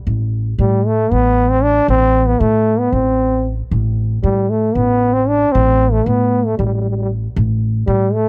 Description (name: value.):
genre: Turkish makam ensemble.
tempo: 230 BPM (eighths).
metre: 7/8.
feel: straight.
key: A makam nihavent.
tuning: A4 = 438 Hz.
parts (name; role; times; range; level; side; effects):
upright bass; bass; 0.1-8.3 s; A1 to A2; -19 LUFS; equal; none.
clear trombone; melody; 0.6-8.3 s; G3 to D4; -17 LUFS; equal; none.
room: small room ambience.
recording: dry, close 1970s-style studio recording.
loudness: -16 LUFS.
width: mono.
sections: 0.0-8.3 A section.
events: none.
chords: none.